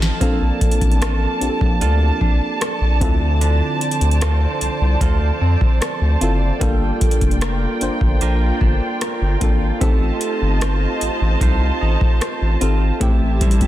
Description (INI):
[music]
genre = contemporary R&B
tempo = 75 BPM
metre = 4/4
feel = straight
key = D minor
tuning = A4 = 440 Hz
[part]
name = mellow FM electric piano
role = accompaniment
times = 0.0-13.7 s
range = A3 to C5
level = -25 LUFS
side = left 2 dB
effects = chorus
[part]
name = dark studio string section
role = sustained chords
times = 0.0-13.7 s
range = F3 to A5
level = -25 LUFS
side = right 2 dB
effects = none
[part]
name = direct-recorded clean electric guitar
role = arpeggios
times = 0.0-13.7 s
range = A2 to C5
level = -28 LUFS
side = right 8 dB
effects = tape echo
[part]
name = saturated sub bass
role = bass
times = 0.0-13.6 s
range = F1 to F2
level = -18 LUFS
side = equal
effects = none
[part]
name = booming analog drum machine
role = drums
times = 0.0-13.7 s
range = hi-hat, kick drum, rim click, snare drum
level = -18 LUFS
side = equal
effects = overdrive
[part]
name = breathy bass clarinet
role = melody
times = 13.4-13.7 s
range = G3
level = -22 LUFS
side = left 1 dB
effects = none
[sound]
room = digital ambience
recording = dense, heavily limited modern master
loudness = -15 LUFS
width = side -14 dB against mid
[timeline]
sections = 0.0-13.0 A section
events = drum fill 0.0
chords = 0.2 Bbmaj7; 3.0 Dm7; 6.6 Gm7; 9.8 F7; 13.0 Am7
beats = | 0.21 1.01 1.81 2.61 | 3.41 4.21 5.01 5.81 | 6.61 7.41 8.21 9.01 | 9.81 10.61 11.41 12.21 | 13.01